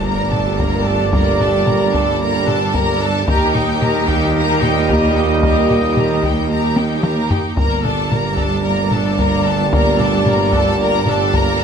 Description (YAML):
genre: cinematic, epic orchestral film score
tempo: 112 BPM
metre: 4/4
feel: straight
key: G minor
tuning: A4 = 440 Hz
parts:
  - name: warm symphonic violin section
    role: melody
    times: 0.0-11.6 s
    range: G5 to Bb5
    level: -24 LUFS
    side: left 5 dB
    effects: none
  - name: warm symphonic violin section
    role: second line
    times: 0.0-11.6 s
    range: G4 to Bb4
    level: -25 LUFS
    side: left 2 dB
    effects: none
  - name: clear symphonic viola section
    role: accompaniment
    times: 0.0-11.6 s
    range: Bb3 to G4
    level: -24 LUFS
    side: right 1 dB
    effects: none
  - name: dark woodwind section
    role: sustained chords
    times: 0.0-11.6 s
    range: G3 to Eb5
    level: -26 LUFS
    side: left 1 dB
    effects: none
  - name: mellow French horn section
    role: sustained chords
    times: 0.0-11.6 s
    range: A3 to G4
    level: -25 LUFS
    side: left 5 dB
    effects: none
  - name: warm trombone section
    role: sustained chords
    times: 0.0-11.6 s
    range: Bb2 to G3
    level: -27 LUFS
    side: right 6 dB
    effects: none
  - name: mellow trumpet section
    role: stabs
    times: 0.0-11.6 s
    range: D5 to Eb5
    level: -23 LUFS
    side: right 3 dB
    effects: none
  - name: clear symphonic double bass section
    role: bass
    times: 0.0-11.6 s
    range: G1 to Eb2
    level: -24 LUFS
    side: right 3 dB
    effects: none
  - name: mellow tuba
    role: bass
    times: 0.0-11.6 s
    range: G1 to Eb2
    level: -23 LUFS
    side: right 4 dB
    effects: none
  - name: rich symphonic cello section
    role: bass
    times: 0.0-11.6 s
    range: Eb2 to G2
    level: -23 LUFS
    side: right 2 dB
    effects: none
  - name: impact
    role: sound effects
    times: 0.0-1.1 s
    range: none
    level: barely audible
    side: none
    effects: none
  - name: solo taiko drums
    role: drums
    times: 0.3-11.6 s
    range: none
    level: -21 LUFS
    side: left 1 dB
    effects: none
room: moderate recital hall reverb, RT60 1.5 s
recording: close, detailed microphones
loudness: -13 LUFS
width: side -7 dB against mid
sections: 0.0-11.6 A section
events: impact 0.0-1.1; drum fill 6.8-7.6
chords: 0.0 Gmadd9; 3.3 Eb; 7.6 Gmadd9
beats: 0.06 0.60 | 1.14 1.67 2.21 2.75 | 3.28 3.82 4.36 4.89 | 5.43 5.97 6.50 7.04 | 7.58 8.12 8.65 9.19 | 9.73 10.27 10.80 11.34